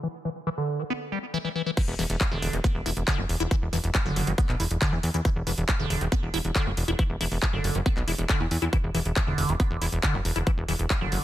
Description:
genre	psychedelic trance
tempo	138 BPM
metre	4/4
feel	straight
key	unclear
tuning	A4 = 439 Hz
part	liquid acid bass	riff	0.0-11.2 s	D3 to F#4	-30 LUFS	moving between left 4 dB and right 3 dB	phaser, auto-pan, sidechain pumping, tape echo
part	big-room dance drum kit	drums	1.8-11.2 s	crash cymbal, handclaps, hi-hat	-31 LUFS	equal	overdrive
part	electronic kick drum	drums	1.8-11.0 s	none	-26 LUFS	equal	overdrive
part	plucky analog bass	bass	1.9-11.2 s	E1 to E2	-27 LUFS	equal	none
room	little or no reverb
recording	none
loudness	-24 LUFS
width	side -13 dB against mid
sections	0.0-1.8 A section; 1.8-11.2 B section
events	drop 1.8-11.2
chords	0.0 E5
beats	| 0.03 0.47 0.90 1.34 | 1.77 2.21 2.64 3.08 | 3.51 3.95 4.38 4.82 | 5.25 5.68 6.12 6.55 | 6.99 7.42 7.86 8.29 | 8.73 9.16 9.60 10.03 | 10.47 10.90

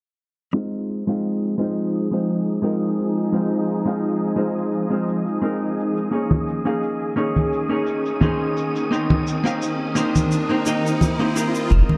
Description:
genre	sunset chillout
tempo	86 BPM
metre	4/4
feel	swing 54% on 16ths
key	F minor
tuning	A4 = 439 Hz
part	hollow-body jazz guitar	accompaniment	0.5-12.0 s	Ab3 to F5	-24 LUFS	equal	digital delay
part	shimmering ambient pad	sustained chords	1.2-12.0 s	Eb3 to Bb4	-28 LUFS	equal	chorus, built-in reverb
part	shaker	drums	0.5-11.9 s	none	-37 LUFS	equal	none
part	wind-like tuned noise texture	texture	1.9-12.0 s	Eb6	-37 LUFS	equal	built-in reverb
part	riser	sound effects	7.9-11.7 s	none	-33 LUFS	equal	none
part	congas	percussion	6.3-12.0 s	none	-23 LUFS	equal	none
part	warm sub bass	bass	11.7-11.8 s	F1	-15 LUFS	equal	none
part	electronic kick drum	drums	11.7-11.9 s	none	barely audible	none	none
room	moderate plate reverb, RT60 2.1 s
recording	dark, warm production, low-pass filter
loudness	-22 LUFS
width	mono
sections	0.5-11.7 A section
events	filter sweep 0.5-11.7; riser 8.1-11.7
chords	0.5 Fm7; 6.1 Eb7sus4; 8.9 Cm7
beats	| 0.54 1.24 1.94 2.63 | 3.33 4.03 4.73 5.42 | 6.12 6.82 7.52 8.22 | 8.91 9.61 10.31 11.01 | 11.70

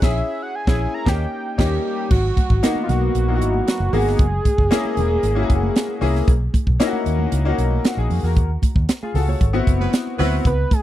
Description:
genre	polished 1980s jazz-funk pop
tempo	115 BPM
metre	4/4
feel	straight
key	G# minor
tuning	A4 = 440 Hz
part	fat analog lead	melody	0.0-6.0, 10.5-10.8 s	D#4 to A#5	-24 LUFS	right 2 dB	none
part	bright grand piano	accompaniment	0.0-10.5 s	A#3 to C#5	-23 LUFS	left 4 dB	analog chorus
part	vintage muted fingered electric bass	bass	0.0-10.6 s	E1 to E#2	-20 LUFS	equal	none
part	tight funk drum kit	drums	0.0-10.8 s	crash cymbal, hi-hat, kick drum, snare drum	-18 LUFS	equal	none
part	congas	percussion	2.1-10.8 s	none	-31 LUFS	right 6 dB	none
part	warm horn section	second line	9.8-10.4 s	F#3 to B4	-27 LUFS	right 3 dB	none
room	small room ambience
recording	dry, close 1970s-style studio recording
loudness	-17 LUFS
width	side -13 dB against mid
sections	0.0-2.1 A section; 2.1-10.8 B section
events	band accent 0.0-2.1, 8.4-10.5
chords	0.0 A#m7b5; 1.1 D#7; 2.1 G#m9; 4.2 F#9; 6.3 Bmaj9; 8.4 C#69; 9.4 G#7alt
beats	| 0.02 0.55 1.07 1.59 | 2.11 2.63 3.15 3.67 | 4.20 4.72 5.24 5.76 | 6.28 6.80 7.32 7.84 | 8.37 8.89 9.41 9.93 | 10.45

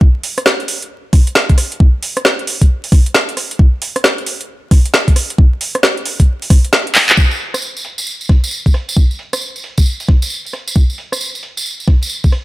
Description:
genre	UK garage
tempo	134 BPM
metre	4/4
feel	swing 64% on 16ths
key	none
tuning	none
part	electronic kick drum	drums	0.0-12.3 s	none	-9 LUFS	equal	none
part	garage drum kit	drums	0.2-12.4 s	crash cymbal, handclaps, hi-hat, rim click, snare drum	-14 LUFS	equal	overdrive, low-pass filter on snare, low-pass filter on hats, low-pass filter on cymbals
part	tambourine	percussion	7.2-12.3 s	none	-22 LUFS	right 2 dB	none
room	little or no reverb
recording	vinyl crackle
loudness	-11 LUFS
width	side -18 dB against mid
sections	0.0-7.2 A section; 7.2-12.4 B section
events	kick drops out 6.7-7.2; drum fill 7.0; band accent 7.1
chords	none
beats	| 0.01 0.46 0.91 1.35 | 1.80 2.25 2.70 3.15 | 3.59 4.04 4.49 4.94 | 5.38 5.83 6.28 6.73 | 7.17 7.62 8.07 8.52 | 8.97 9.41 9.86 10.31 | 10.76 11.21 11.65 12.10

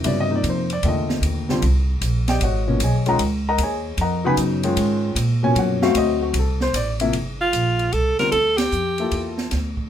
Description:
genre	modal jazz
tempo	152 BPM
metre	3/4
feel	swing 66% on 8ths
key	unclear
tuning	A4 = 440 Hz
part	dark grand piano	accompaniment	0.0-9.5 s	Bb2 to Cb6	-21 LUFS	left 2 dB	none
part	upright bass	bass	0.0-9.9 s	G1 to Bb2	-22 LUFS	equal	none
part	open jazz drum kit	drums	0.0-9.8 s	hi-hat, kick drum, ride cymbal, snare drum	-29 LUFS	right 1 dB	none
part	bright alto saxophone	melody	7.4-9.4 s	F4 to Bb4	-20 LUFS	right 1 dB	none
room	light reverb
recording	minimal, uncompressed stereo recording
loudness	-18 LUFS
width	side -10 dB against mid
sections	0.0-7.1 A section; 7.1-9.9 B section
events	band accent 8.5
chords	0.0 Cm11; 2.4 Abm11; 6.0 D7; 7.1 Gm9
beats	| 0.04 0.44 0.83 | 1.23 1.62 2.02 | 2.41 2.80 3.20 | 3.59 3.99 4.38 | 4.78 5.17 5.57 | 5.96 6.35 6.75 | 7.14 7.54 7.93 | 8.33 8.72 9.12 | 9.51

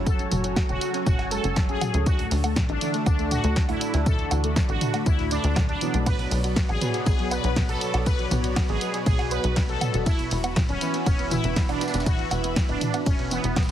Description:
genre	melodic techno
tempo	120 BPM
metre	4/4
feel	straight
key	unclear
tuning	A4 = 439 Hz
part	lush unison pad	sustained chords	0.0-13.7 s	F#4 to B5	-35 LUFS	left 2 dB	chorus, phaser, sidechain pumping
part	analog synth brass	stabs	0.0-13.5 s	B2 to F#4	-32 LUFS	right 3 dB	chorus, sidechain pumping, digital delay
part	tight sequencer bass	bass	0.0-13.7 s	D1 to D2	-28 LUFS	equal	sidechain pumping
part	resonant sweep polysynth	melody	0.1-13.7 s	B3 to B4	-30 LUFS	equal	chorus, sidechain pumping, digital delay
part	soft round pluck	arpeggios	0.1-13.7 s	A2 to B5	-33 LUFS	left 1 dB	lush chorus, sidechain pumping, digital delay
part	breakbeat sampler-style drum kit	drums	0.1-13.7 s	hi-hat, snare drum, tambourine	-40 LUFS	equal	none
part	electronic kick drum	drums	0.1-13.7 s	none	-23 LUFS	equal	overdrive
part	punchy analog drum machine	drums	0.1-13.7 s	hi-hat, ride cymbal, snare drum, toms, woodblock	-30 LUFS	right 1 dB	sidechain pumping on hats, sidechain pumping on perc, sidechain pumping on toms, sidechain pumping on cymbals
room	light reverb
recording	heavily compressed radio sound, multiband compression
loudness	-21 LUFS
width	side -11 dB against mid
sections	0.0-13.7 A section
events	none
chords	0.0 F#m; 2.1 D; 6.1 Bmadd9; 10.1 Esus2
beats	| 0.06 0.56 1.06 1.56 | 2.06 2.56 3.06 3.56 | 4.06 4.56 5.06 5.56 | 6.06 6.56 7.06 7.56 | 8.06 8.56 9.06 9.56 | 10.06 10.56 11.06 11.56 | 12.06 12.56 13.06 13.56

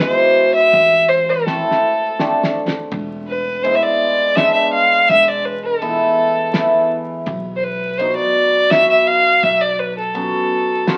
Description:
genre	klezmer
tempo	83 BPM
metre	3/4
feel	straight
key	unclear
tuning	A4 = 440 Hz
part	dark violin	melody	0.0-11.0 s	A4 to F5	-17 LUFS	equal	none
part	cimbalom	accompaniment	0.0-11.0 s	B2 to F4	-22 LUFS	equal	none
part	cloth-damped thuddy drum kit	drums	0.0-11.0 s	hi-hat, kick drum, ride cymbal, snare drum	-25 LUFS	equal	none
part	upright bass	bass	0.7-10.3 s	E1 to B1	-32 LUFS	equal	none
room	moderate studio reverb, RT60 0.6 s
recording	very old 78 rpm record, vinyl crackle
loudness	-16 LUFS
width	mono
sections	0.0-2.9 A section; 2.9-11.0 B section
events	drum fill 1.5-2.9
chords	0.0 E; 0.7 Am; 2.9 E; 7.3 B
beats	0.00 | 0.73 1.46 2.19 | 2.92 3.64 4.37 | 5.09 5.82 6.54 | 7.27 7.99 8.71 | 9.43 10.16 10.88

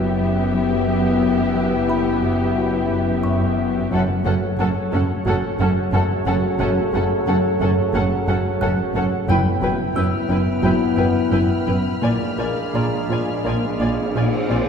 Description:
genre	cinematic, suspense film score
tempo	89 BPM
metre	4/4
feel	straight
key	unclear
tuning	A4 = 440 Hz
part	muted symphonic violin section	melody	0.0-14.6 s	E5 to G#5	-31 LUFS	left 2 dB	none
part	muted symphonic violin section	second line	0.0-14.6 s	G4 to D5	-29 LUFS	left 2 dB	none
part	muted symphonic viola section	accompaniment	0.0-14.6 s	B3 to E#4	-28 LUFS	left 2 dB	none
part	dark French horn section	sustained chords	0.0-14.5 s	A3 to F#4	-26 LUFS	left 4 dB	none
part	warbly tape-like pad	sustained chords	0.0-14.7 s	E4 to G5	-30 LUFS	right 1 dB	chorus, built-in reverb
part	warm trombone section	sustained chords	0.0-14.5 s	C#3 to B3	-27 LUFS	equal	none
part	fat analog bass	riff	0.0-14.7 s	F#2 to A#3	-24 LUFS	left 1 dB	none
part	muted studio double bass section	bass	0.0-14.6 s	F#1 to A#1	-26 LUFS	right 2 dB	none
part	muted symphonic cello section	bass	0.0-14.6 s	F#2 to A#2	-25 LUFS	right 2 dB	none
part	music box	texture	1.9-14.7 s	G5 to G6	-32 LUFS	right 1 dB	none
part	timpani	percussion	3.9-4.9, 9.3-10.3 s	F#2	-27 LUFS	left 1 dB	none
part	muted symphonic violin section	texture	9.3-14.5 s	B5 to E#6	-34 LUFS	left 2 dB	none
part	swell	sound effects	14.1-14.7 s	none	-31 LUFS	equal	none
room	wet concert hall reverb, RT60 2.1 s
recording	recorded in a church or concert hall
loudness	-17 LUFS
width	side -6 dB against mid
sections	0.0-14.7 A section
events	none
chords	0.0 Em/F#; 3.9 F#m; 9.3 Em/F#; 12.0 A#7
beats	0.55 | 1.22 1.89 2.57 3.24 | 3.92 4.59 5.27 5.93 | 6.60 7.27 7.94 8.61 | 9.29 9.96 10.63 11.31 | 12.02 12.74 13.45 14.15

